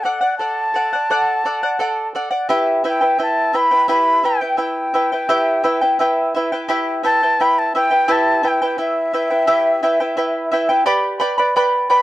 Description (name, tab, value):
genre	andean folk, Andean ensemble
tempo	57 BPM (dotted quarters)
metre	6/8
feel	straight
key	E minor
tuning	A4 = 439 Hz
part	breathy reedy large quena	melody	0.0-12.0 s	E5 to B5	-17 LUFS	equal	none
part	charango	accompaniment	0.0-12.0 s	E4 to B5	-17 LUFS	equal	none
room	little or no reverb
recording	dry, close 1970s-style studio recording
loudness	-15 LUFS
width	side -15 dB against mid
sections	0.0-10.9 A section; 10.9-12.0 B section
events	none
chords	0.0 D; 2.5 Em; 10.9 G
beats	| 0.40 1.45 | 2.50 3.54 | 4.59 5.64 | 6.69 7.74 | 8.78 9.83 | 10.87 11.92